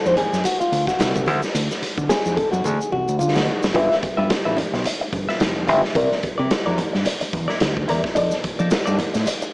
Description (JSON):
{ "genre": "funk", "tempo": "109 BPM", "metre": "4/4", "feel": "swing 56% on 16ths", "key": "unclear", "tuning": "A4 = 440 Hz", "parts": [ { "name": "clean electric guitar", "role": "accompaniment", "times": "0.0-9.5 s", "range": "Eb4 to E5", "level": "-22 LUFS", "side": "left 1 dB", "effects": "wah" }, { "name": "fingered electric bass", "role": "bass", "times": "0.1-9.2 s", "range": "F1 to F3", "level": "-23 LUFS", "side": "equal", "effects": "none" }, { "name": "tube shaker", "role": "percussion", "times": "0.1-3.7, 8.2-9.5 s", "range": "none", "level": "-37 LUFS", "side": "left 1 dB", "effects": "none" }, { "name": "raw garage drum kit", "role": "drums", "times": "0.2-9.4 s", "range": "hi-hat, kick drum, snare drum", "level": "-23 LUFS", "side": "equal", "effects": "none" }, { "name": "congas", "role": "percussion", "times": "0.2-9.4 s", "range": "none", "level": "-32 LUFS", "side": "right 1 dB", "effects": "none" } ], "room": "light reverb, small room ambience", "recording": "small speaker sound", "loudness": "-18 LUFS", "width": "side -26 dB against mid", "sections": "0.0-3.8 A section; 3.8-9.5 B section", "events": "clean electric guitar solo 0.0-3.8; drum fill 2.6-3.8", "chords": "0.0 D7; 3.8 G13; 6.0 C9 (rootless); 8.2 F13", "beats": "0.45 1.00 | 1.55 2.10 2.65 3.20 | 3.75 4.30 4.85 5.40 | 5.95 6.50 7.06 7.61 | 8.16 8.71 9.26" }